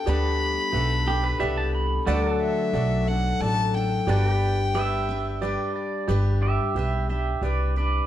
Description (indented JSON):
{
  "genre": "honky-tonk and classic country",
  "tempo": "90 BPM",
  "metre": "3/4",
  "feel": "straight",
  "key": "G major",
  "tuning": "A4 = 440 Hz",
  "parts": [
    { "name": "warm violin", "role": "melody", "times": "0.0-5.8 s", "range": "E5 to B5", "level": "-28 LUFS", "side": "left 2 dB", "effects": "plate reverb" },
    { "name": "picked steel-string acoustic guitar", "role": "accompaniment", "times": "0.0-8.1 s", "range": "D3 to B4", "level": "-29 LUFS", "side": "left 5 dB", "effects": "none" },
    { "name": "pedal steel guitar", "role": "sustained chords", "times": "0.0-6.1 s", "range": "F#3 to D5", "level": "-31 LUFS", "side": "left 1 dB", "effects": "none" },
    { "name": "bright upright piano", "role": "accompaniment", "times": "0.1-8.0 s", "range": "F#4 to E5", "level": "-33 LUFS", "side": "right 5 dB", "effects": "none" },
    { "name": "upright bass", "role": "bass", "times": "0.1-8.0 s", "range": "G1 to D2", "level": "-25 LUFS", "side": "equal", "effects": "none" },
    { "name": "pedal steel guitar", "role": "second line", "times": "1.1-8.1 s", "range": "G4 to B5", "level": "-29 LUFS", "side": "right 5 dB", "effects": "none" }
  ],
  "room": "light reverb",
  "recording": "dark, warm production",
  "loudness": "-22 LUFS",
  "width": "side -12 dB against mid",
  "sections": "0.0-6.1 A section; 6.1-8.1 B section",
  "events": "pedal steel guitar solo 6.1-8.1",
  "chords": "0.0 Gadd9; 2.1 D; 4.1 G",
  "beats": "| 0.07 0.74 1.41 | 2.08 2.74 3.41 | 4.08 4.75 5.42 | 6.09 6.76 7.43"
}